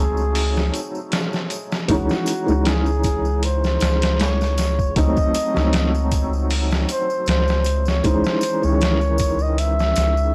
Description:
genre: trip hop.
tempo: 78 BPM.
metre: 4/4.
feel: swing 55% on 16ths.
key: C# harmonic minor.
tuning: A4 = 442 Hz.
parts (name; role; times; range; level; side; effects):
trumpet with bucket mute; melody; 0.0-10.3 s; F#4 to E5; -27 LUFS; equal; dub echo.
felt-muted upright piano; accompaniment; 0.0-10.3 s; D#3 to D#4; -26 LUFS; equal; tremolo, vintage 12-bit sampler grit, tape echo.
soft dub sub bass; bass; 0.0-10.3 s; C#2; -23 LUFS; equal; none.
tambourine; percussion; 0.2-10.3 s; none; -40 LUFS; equal; none.
trip hop sampler-style drum kit; drums; 0.4-10.2 s; hi-hat, kick drum, snare drum; -25 LUFS; equal; none.
room: studio reverb.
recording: dry, gritty hardware recording, cassette tape.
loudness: -20 LUFS.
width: mono.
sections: 0.0-10.3 A section.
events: none.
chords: 0.0 G#7b9/C#; 1.9 C#madd9; 5.0 Adim7; 8.0 C#madd9.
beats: 0.35 1.12 | 1.89 2.66 3.43 4.20 | 4.97 5.74 6.50 7.27 | 8.04 8.81 9.58.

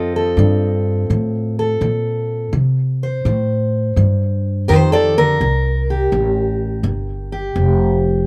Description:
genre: acoustic country blues, solo or duo.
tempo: 84 BPM.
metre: 4/4.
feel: swing 68% on 8ths.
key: unclear.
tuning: A4 = 440 Hz.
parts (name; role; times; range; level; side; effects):
fingerpicked steel-string acoustic guitar; melody; 0.0-8.3 s; C3 to Eb5; -21 LUFS; equal; none.
upright bass; bass; 0.0-8.3 s; F1 to C3; -20 LUFS; equal; none.
room: little or no reverb.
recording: recorded outdoors, with no room sound.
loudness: -17 LUFS.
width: mono.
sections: 0.0-8.3 A section.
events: none.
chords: 0.0 F7; 5.4 C7(no3).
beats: 0.39 1.10 1.82 | 2.54 3.25 3.97 4.69 | 5.41 6.12 6.84 7.56.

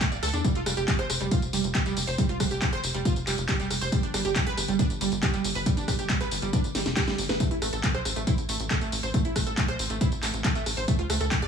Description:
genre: uplifting trance.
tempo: 138 BPM.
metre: 4/4.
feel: straight.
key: unclear.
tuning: A4 = 441 Hz.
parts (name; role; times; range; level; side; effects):
wide unison pluck; arpeggios; 0.0-11.5 s; G3 to D5; -30 LUFS; right 4 dB; sidechain pumping, digital delay.
electronic kick drum; drums; 0.0-11.4 s; none; -26 LUFS; equal; none.
techno drum kit; drums; 0.0-11.5 s; handclaps, hi-hat, rim click, snare drum, tambourine; -30 LUFS; left 1 dB; none.
tight sequencer bass; bass; 0.1-11.5 s; D1 to E2; -32 LUFS; equal; sidechain pumping.
room: light reverb.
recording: none.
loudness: -24 LUFS.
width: side -7 dB against mid.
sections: 0.0-11.5 A section.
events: drum fill 6.7-7.4.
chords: 0.4 Fsus2; 3.9 N.C.; 10.9 D5.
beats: 0.01 | 0.44 0.88 1.31 1.75 | 2.18 2.62 3.05 3.49 | 3.92 4.36 4.79 5.23 | 5.66 6.10 6.53 6.97 | 7.40 7.84 8.27 8.71 | 9.14 9.57 10.01 10.44 | 10.88 11.31.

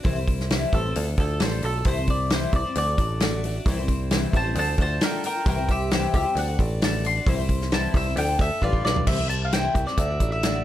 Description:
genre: folk rock and heartland rock.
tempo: 133 BPM.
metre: 4/4.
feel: straight.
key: C major.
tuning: A4 = 439 Hz.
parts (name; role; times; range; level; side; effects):
picked twelve-string acoustic guitar; accompaniment; 0.0-10.6 s; C3 to D5; -30 LUFS; left 3 dB; none.
picked electric bass; bass; 0.0-10.6 s; A1 to D2; -26 LUFS; equal; none.
natural country drum kit; drums; 0.0-10.5 s; crash cymbal, hi-hat, kick drum, snare drum, toms; -25 LUFS; equal; none.
mandolin; melody; 0.7-10.6 s; F4 to C6; -27 LUFS; left 1 dB; none.
room: light reverb.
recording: dark, warm production.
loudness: -21 LUFS.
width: side -12 dB against mid.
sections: 0.0-9.1 A section; 9.1-10.6 B section.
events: mandolin solo 0.0-9.1; drum fill 8.6-9.1.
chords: 0.0 C; 0.9 Dm; 1.9 C; 2.8 D; 3.7 C; 4.6 Dm; 5.5 C; 6.4 D; 7.3 C; 8.2 Dm; 8.6 G; 9.1 C; 10.0 D.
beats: | 0.04 0.50 0.95 1.40 | 1.85 2.31 2.76 3.21 | 3.66 4.11 4.56 5.01 | 5.46 5.92 6.37 6.82 | 7.27 7.72 8.17 8.62 | 9.07 9.53 9.98 10.43.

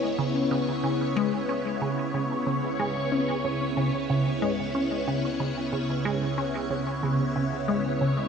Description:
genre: ambient, sequencer-driven space music.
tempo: 92 BPM.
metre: 4/4.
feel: straight.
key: C# minor.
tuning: A4 = 439 Hz.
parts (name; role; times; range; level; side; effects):
phased string machine; sustained chords; 0.0-8.3 s; C#3 to C#5; -27 LUFS; left 1 dB; ensemble chorus, phaser.
analog drone; bass; 0.0-8.3 s; C#2; -48 LUFS; equal; chorus.
resonant blip pluck; riff; 0.2-8.2 s; C#3 to C#4; -28 LUFS; equal; phaser, tape echo.
room: wet huge ambient reverb, RT60 8.3 s.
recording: none.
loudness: -24 LUFS.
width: side -6 dB against mid.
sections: 0.0-8.3 A section.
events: fade-in on synth drone 0.0-8.3.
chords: 0.0 C#m7.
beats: 0.51 | 1.16 1.82 2.47 3.12 | 3.77 4.42 5.08 5.73 | 6.38 7.03 7.69.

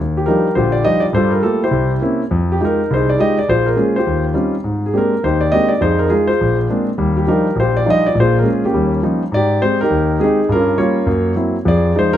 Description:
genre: jazz.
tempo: 206 BPM.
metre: 4/4.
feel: swing 60% on 8ths.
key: Eb major.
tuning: A4 = 438 Hz.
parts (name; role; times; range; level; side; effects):
warm concert grand piano; solo; 0.0-12.2 s; Bb1 to Eb5; -13 LUFS; equal; none.
room: moderate large studio reverb, RT60 1.4 s.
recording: none.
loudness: -13 LUFS.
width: side -11 dB against mid.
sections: 0.0-9.3 A section; 9.3-12.2 B section.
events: none.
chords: 0.0 Ebmaj9; 1.2 Gm9; 1.7 C7b9; 2.3 Fm9; 3.5 Bbm7; 4.1 Eb13; 4.7 Abmaj9#11; 5.8 Fm7; 6.4 Bb9; 7.0 Ebmaj9; 8.2 Bbm7; 8.7 Eb9; 9.3 Abmaj7; 10.5 Gm7b5; 11.1 Gb7#11; 11.7 Fm7.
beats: 0.28 0.57 0.86 | 1.15 1.44 1.74 2.03 | 2.32 2.61 2.90 3.19 | 3.49 3.78 4.07 4.36 | 4.65 4.95 5.24 5.53 | 5.82 6.11 6.41 6.70 | 6.99 7.28 7.57 7.87 | 8.16 8.45 8.74 9.03 | 9.32 9.62 9.91 10.20 | 10.49 10.78 11.07 11.37 | 11.66 11.95.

